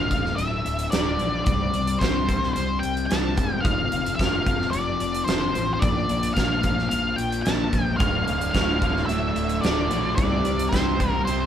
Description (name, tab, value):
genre	classic rock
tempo	110 BPM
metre	4/4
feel	straight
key	D minor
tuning	A4 = 440 Hz
part	octave-fuzz lead guitar	melody	0.0-11.5 s	C5 to A5	-26 LUFS	left 1 dB	distortion
part	overdriven electric guitar	riff	0.0-11.5 s	D2 to C4	-29 LUFS	left 6 dB	none
part	fuzz fingered electric bass	bass	0.0-11.5 s	D1 to C2	-29 LUFS	equal	overdrive
part	huge arena drum kit	drums	0.1-11.4 s	hi-hat, kick drum, snare drum	-25 LUFS	right 1 dB	none
part	cranked stack guitar	riff	8.0-11.5 s	D2 to C4	-28 LUFS	right 5 dB	overdrive
room	light reverb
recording	band playing live in one room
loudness	-21 LUFS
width	side -9 dB against mid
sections	0.0-11.5 A section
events	none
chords	0.0 Dmadd9; 1.5 Csus2; 3.6 F5; 5.8 Bb; 8.0 Dmadd9; 10.2 Csus2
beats	0.38 0.92 | 1.47 2.01 2.55 3.10 | 3.64 4.19 4.73 5.28 | 5.82 6.37 6.91 7.46 | 8.00 8.54 9.09 9.63 | 10.18 10.72 11.27